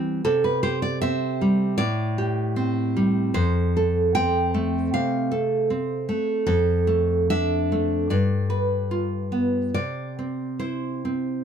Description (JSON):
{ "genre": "romantic piece for solo classical guitar", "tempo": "76 BPM", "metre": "4/4", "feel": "uneven beats, rubato", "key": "C major", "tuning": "A4 = 439 Hz", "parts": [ { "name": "nylon-string guitar", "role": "solo", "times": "0.0-11.4 s", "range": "F2 to G5", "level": "-21 LUFS", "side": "right 1 dB", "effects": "none" } ], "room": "little or no reverb", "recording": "close, detailed microphones", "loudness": "-21 LUFS", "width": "side -8 dB against mid", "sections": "0.0-11.4 A section", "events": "none", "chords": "0.2 C; 1.8 Am7; 3.3 F; 6.5 Dm/F; 8.1 G7; 9.7 C" }